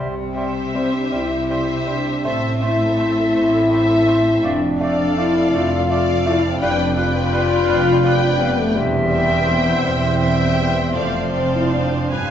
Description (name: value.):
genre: classical, slow romantic movement for symphony orchestra.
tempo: 49-57 BPM (dotted quarters).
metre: 12/8.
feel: rubato.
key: C major.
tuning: A4 = 440 Hz.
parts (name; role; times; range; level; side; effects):
hollow concert flute; second line; 0.0-12.3 s; D5 to F5; -28 LUFS; left 1 dB; none.
warm oboe; second line; 0.0-12.3 s; B4 to D5; -30 LUFS; right 2 dB; none.
clear bassoon; accompaniment; 0.0-12.3 s; F3 to A3; -28 LUFS; right 2 dB; none.
dark French horn section; sustained chords; 0.0-12.3 s; G3 to F4; -19 LUFS; left 2 dB; none.
concert harp; arpeggios; 0.0-12.3 s; E2 to C5; -28 LUFS; left 4 dB; none.
warm studio cello section; bass; 0.0-12.3 s; E2 to C3; -25 LUFS; right 2 dB; none.
warm studio double bass section; bass; 0.0-12.3 s; E1 to C2; -24 LUFS; right 3 dB; none.
warm studio violin section; melody; 0.4-12.3 s; E5 to Ab5; -28 LUFS; left 2 dB; none.
rich studio violin section; second line; 0.4-12.3 s; C5 to F5; -28 LUFS; left 4 dB; none.
rich studio viola section; accompaniment; 0.4-12.3 s; G4 to C5; -30 LUFS; right 2 dB; none.
room: wet recital hall reverb, RT60 1.3 s.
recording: nothing above 7.8 kHz.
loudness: -16 LUFS.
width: side -9 dB against mid.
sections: 0.0-12.3 A section.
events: none.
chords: 0.0 C; 2.3 Am; 4.4 Dm/F; 6.6 G7/F; 8.8 C/E; 10.9 Dm7/F.